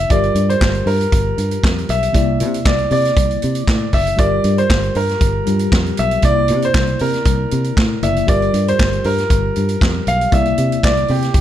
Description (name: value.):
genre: disco.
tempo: 117 BPM.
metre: 4/4.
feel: straight.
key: G dorian.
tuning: A4 = 441 Hz.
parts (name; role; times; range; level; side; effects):
warm concert grand piano; melody; 0.0-11.4 s; G4 to F5; -19 LUFS; right 1 dB; none.
tine electric piano; accompaniment; 0.0-11.4 s; C3 to D5; -22 LUFS; left 3 dB; medium stereo tremolo.
fingered electric bass; bass; 0.0-11.4 s; F#1 to C3; -19 LUFS; equal; none.
vintage drum kit; drums; 0.1-11.4 s; handclaps, hi-hat, kick drum, snare drum; -18 LUFS; equal; none.
room: light reverb.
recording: none.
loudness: -13 LUFS.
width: side -11 dB against mid.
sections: 0.0-11.4 A section.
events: none.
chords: 0.1 Gm7; 2.1 C9; 4.2 Gm7; 6.2 C9; 8.3 Gm7; 10.3 C9.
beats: | 0.10 0.61 1.12 1.64 | 2.15 2.66 3.17 3.68 | 4.19 4.70 5.21 5.72 | 6.23 6.74 7.25 7.76 | 8.28 8.79 9.30 9.81 | 10.32 10.83 11.35.